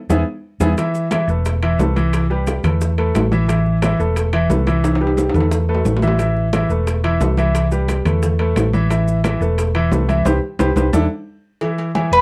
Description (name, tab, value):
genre	latin, salsa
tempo	177 BPM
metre	4/4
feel	straight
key	A minor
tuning	A4 = 441 Hz
part	clear grand piano	accompaniment	0.1-12.2 s	E3 to E5	-22 LUFS	equal	none
part	hollow-body short-scale fingered electric bass	bass	0.1-12.2 s	E1 to E2	-21 LUFS	equal	none
part	bongos and cowbell	percussion	0.1-12.1 s	none	-29 LUFS	equal	none
part	congas	percussion	0.1-12.2 s	none	-27 LUFS	equal	none
part	maracas	percussion	0.1-11.0 s	none	-41 LUFS	equal	none
part	timbales and agogo bells	percussion	0.1-12.1 s	none	-27 LUFS	equal	none
part	Cuban tres	melody	12.1-12.2 s	B4	-10 LUFS	equal	none
room	light reverb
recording	dark, warm production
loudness	-18 LUFS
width	mono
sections	0.8-11.6 A section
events	drum fill 0.0-0.8, 4.8-6.2; band accent 0.0-0.8, 10.3-11.6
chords	0.1 E; 0.8 A5; 1.5 Esus4; 2.1 Cmaj7; 2.8 Esus4; 3.5 A5; 4.2 Esus4; 4.8 Cmaj7; 5.5 Esus4; 6.2 A5; 6.9 Esus4; 7.5 Cmaj7; 8.2 Esus4; 8.9 A5; 9.6 Esus4; 10.3 C5; 10.9 E7sus4; 11.6 A5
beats	0.10 0.44 | 0.78 1.12 1.46 1.79 | 2.13 2.47 2.81 3.15 | 3.49 3.83 4.16 4.50 | 4.84 5.18 5.52 5.86 | 6.20 6.53 6.87 7.21 | 7.55 7.89 8.23 8.57 | 8.90 9.24 9.58 9.92 | 10.26 10.60 10.94 11.28 | 11.61 11.95